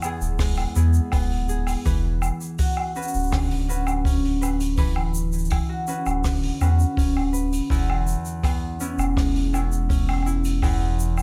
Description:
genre	folktronica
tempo	82 BPM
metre	4/4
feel	straight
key	unclear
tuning	A4 = 440 Hz
part	concert harp	arpeggios	0.0-11.2 s	E2 to B4	-29 LUFS	equal	none
part	jazz brush drum kit	drums	0.0-11.2 s	hi-hat, rim click, shaker, woodblock	-35 LUFS	equal	none
part	warm sub bass	bass	0.2-11.2 s	D1 to E2	-25 LUFS	equal	none
part	kick drum	drums	0.4-10.8 s	none	-26 LUFS	equal	none
room	small room ambience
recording	none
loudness	-23 LUFS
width	mono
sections	0.0-11.2 A section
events	none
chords	0.0 E; 1.9 Bmadd9; 7.7 C#m7/E

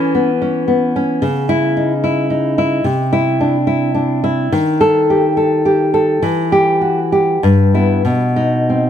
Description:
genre	romantic piece for solo classical guitar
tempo	92-112 BPM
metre	3/4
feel	rubato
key	E minor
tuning	A4 = 440 Hz
part	nylon-string guitar	solo	0.0-8.9 s	G2 to A4	-12 LUFS	equal	none
room	light reverb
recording	none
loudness	-12 LUFS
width	side -9 dB against mid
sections	0.0-8.9 A section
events	none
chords	0.0 C#m/E; 1.2 C#m; 2.9 Cadd9; 4.5 D#; 6.2 Em; 7.4 Em/G; 8.0 B

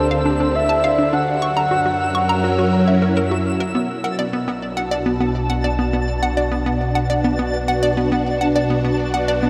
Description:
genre	ambient, sequencer-driven space music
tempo	103 BPM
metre	4/4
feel	straight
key	B minor from 3.8 s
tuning	A4 = 440 Hz
part	breathy flute-like synth lead	melody	0.0-3.2 s	C5 to F#5	-24 LUFS	equal	chorus, shimmer reverb, tape echo
part	phased string machine	sustained chords	0.0-9.5 s	B2 to F#5	-23 LUFS	equal	ensemble chorus, phaser, shimmer reverb
part	hollow square pluck	riff	0.0-9.5 s	B3 to C#6	-24 LUFS	equal	chorus, shimmer reverb, tape echo
part	analog drone	bass	0.0-9.5 s	B1 to F#2	-27 LUFS	equal	chorus
part	twinkling granular texture	texture	0.0-9.5 s	A5 to E6	-33 LUFS	equal	built-in reverb, shimmer reverb
room	wet huge ambient reverb, RT60 7.8 s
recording	none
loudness	-19 LUFS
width	mono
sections	0.0-3.8 A section; 3.8-9.5 B section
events	none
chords	0.0 Dmadd9; 1.4 F#7; 3.8 Bm

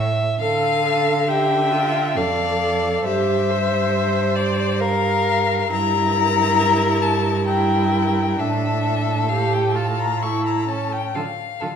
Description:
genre	classical, slow romantic movement for string quartet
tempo	67 BPM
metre	3/4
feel	uneven beats, rubato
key	D minor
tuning	A4 = 440 Hz
part	rich violin	second line	0.0-11.7 s	A4 to F5	-26 LUFS	left 1 dB	none
part	clear cello	bass	0.0-11.7 s	F2 to D3	-23 LUFS	right 4 dB	none
part	rich violin	melody	0.4-11.8 s	D5 to C#6	-22 LUFS	left 8 dB	none
part	rich viola	accompaniment	0.4-11.7 s	C#4 to C5	-24 LUFS	right 2 dB	none
room	wet recital hall reverb, RT60 1.6 s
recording	minimal, uncompressed stereo recording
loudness	-17 LUFS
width	side -7 dB against mid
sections	0.4-11.8 A section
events	none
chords	0.4 Dm; 3.1 Gm7; 5.7 Edim/G; 8.4 Asus4; 10.2 A; 11.1 Dm

